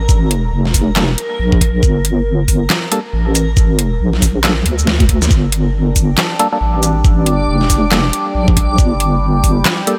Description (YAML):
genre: deep dubstep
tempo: 138 BPM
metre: 4/4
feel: swing 60% on 16ths, half-time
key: G minor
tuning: A4 = 440 Hz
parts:
  - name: deep soft wobble bass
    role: bass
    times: 0.0-9.6 s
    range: F1 to D2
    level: -17 LUFS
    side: equal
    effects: chorus, tube saturation
  - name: backwards swelling texture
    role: texture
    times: 0.0-10.0 s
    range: Bb4 to D5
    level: -27 LUFS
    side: equal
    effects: built-in reverb
  - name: dubstep drum kit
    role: drums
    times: 0.1-10.0 s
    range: handclaps, hi-hat, shaker, snare drum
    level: -19 LUFS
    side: equal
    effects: none
  - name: electronic kick drum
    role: drums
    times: 0.1-9.5 s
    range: none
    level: -15 LUFS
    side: equal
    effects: none
  - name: percussive organ stab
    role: stabs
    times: 1.0-10.0 s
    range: G3 to A4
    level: -23 LUFS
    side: equal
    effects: chorus, phaser, cassette tape, dub echo
  - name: overtone-sweeping drone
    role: sustained chords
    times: 5.8-10.0 s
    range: G3 to G4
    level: -23 LUFS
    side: equal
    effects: chorus, built-in reverb
room: light reverb, digital ambience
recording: none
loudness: -14 LUFS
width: mono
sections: 0.0-10.0 A section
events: drum fill 4.9-5.3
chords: 0.0 Gmadd9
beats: | 0.09 0.53 0.96 1.40 | 1.83 2.27 2.70 3.13 | 3.57 4.00 4.44 4.87 | 5.31 5.74 6.18 6.61 | 7.05 7.48 7.92 8.35 | 8.79 9.22 9.66